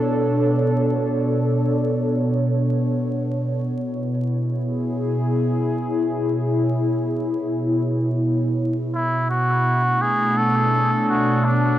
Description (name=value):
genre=ambient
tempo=free time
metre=none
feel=none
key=B dorian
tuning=A4 = 439 Hz
part: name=warbly tape-like pad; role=sustained chords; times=0.0-11.8 s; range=B2 to C#5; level=-20 LUFS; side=equal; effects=chorus, built-in reverb
part: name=trumpet with cup mute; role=melody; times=8.9-11.8 s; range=D4 to A4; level=-20 LUFS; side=equal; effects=dub echo
room=wet huge ambient reverb, RT60 5.1 s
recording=dark, warm production, vinyl crackle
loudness=-19 LUFS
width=side -12 dB against mid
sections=0.0-11.8 A section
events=none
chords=0.0 Bm7; 2.9 C#m7/B; 8.6 Bm7